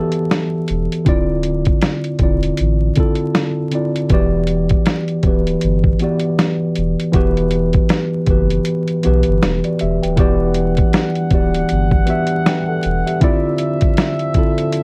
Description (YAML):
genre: lo-fi hip hop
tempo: 79 BPM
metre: 4/4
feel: swing 58% on 16ths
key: E minor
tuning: A4 = 440 Hz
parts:
  - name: tine electric piano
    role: accompaniment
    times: 0.0-14.8 s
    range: D3 to G5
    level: -20 LUFS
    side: equal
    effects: low-pass filter
  - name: lo-fi sampler-style drum kit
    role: drums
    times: 0.1-14.8 s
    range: hi-hat, kick drum, snare drum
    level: -19 LUFS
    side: equal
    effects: overdrive
  - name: soft dub sub bass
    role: bass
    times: 0.7-13.0 s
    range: D1 to B1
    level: -22 LUFS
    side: equal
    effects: none
  - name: clear brass ensemble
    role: sustained chords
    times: 10.2-14.8 s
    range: D3 to F#5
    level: -27 LUFS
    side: equal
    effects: low-pass filter, plate reverb
room: light reverb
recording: dark, warm production, vinyl crackle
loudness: -17 LUFS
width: mono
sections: 0.0-10.2 A section; 10.2-14.8 A section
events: kick muted 8.7-10.2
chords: 0.0 Em9; 1.1 Dm9; 4.1 Em9; 13.2 Dm9